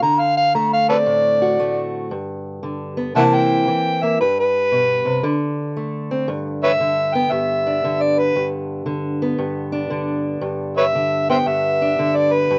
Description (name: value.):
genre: acoustic country blues, solo or duo.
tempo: 115 BPM.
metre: 4/4.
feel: swing 65% on 8ths.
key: G major.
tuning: A4 = 441 Hz.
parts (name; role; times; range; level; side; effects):
overdriven harmonica; melody; 0.0-12.6 s; A4 to Bb5; -19 LUFS; equal; none.
fingerpicked steel-string acoustic guitar; accompaniment; 0.0-12.6 s; G2 to F#4; -24 LUFS; equal; none.
room: studio reverb.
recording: rough home demo mix, nothing above 7.9 kHz.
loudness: -19 LUFS.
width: mono.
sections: 0.0-6.3 A section; 6.3-12.6 B section.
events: harmonica solo 6.3-12.6.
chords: 0.0 D7; 2.1 G; 3.1 C7; 4.2 G; 5.2 D5; 6.3 G.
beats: | 0.02 0.54 1.06 1.59 | 2.11 2.63 3.15 3.67 | 4.19 4.71 5.23 5.75 | 6.27 6.79 7.31 7.83 | 8.35 8.87 9.39 9.91 | 10.43 10.95 11.46 11.98 | 12.50.